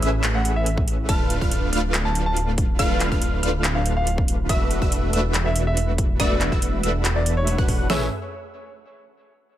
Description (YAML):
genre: future bass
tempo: 141 BPM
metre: 4/4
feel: half-time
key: A major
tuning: A4 = 440 Hz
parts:
  - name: wide unison pluck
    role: arpeggios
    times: 0.0-8.1 s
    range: E6 to F#6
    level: -32 LUFS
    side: right 1 dB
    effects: sidechain pumping, tape echo
  - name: supersaw stab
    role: riff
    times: 0.0-8.1 s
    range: A3 to F#5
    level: -26 LUFS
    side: equal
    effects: sidechain pumping
  - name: wide detuned saw bass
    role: bass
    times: 0.0-8.1 s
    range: D1 to A1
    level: -24 LUFS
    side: equal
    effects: chorus, tube saturation, sidechain pumping
  - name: trap drum kit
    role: drums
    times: 0.0-7.8 s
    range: handclaps, hi-hat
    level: -27 LUFS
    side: equal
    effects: overdrive
  - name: warm grand piano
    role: melody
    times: 0.3-8.1 s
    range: C#5 to A5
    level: -30 LUFS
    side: equal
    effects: sidechain pumping, tape echo
  - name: dubstep drum kit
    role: drums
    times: 0.8-8.0 s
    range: hi-hat, kick drum, snare drum, toms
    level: -23 LUFS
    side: equal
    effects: none
room: digital ambience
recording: none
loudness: -19 LUFS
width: side -12 dB against mid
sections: 0.0-7.9 A section; 7.9-9.6 B section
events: drop 0.0-7.9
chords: 0.0 Amaj9; 1.1 Dm6; 4.5 E9sus4; 7.9 Amaj9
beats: 0.24 0.66 | 1.09 1.51 1.94 2.37 | 2.79 3.22 3.64 4.07 | 4.49 4.92 5.34 5.77 | 6.20 6.62 7.05 7.47 | 7.90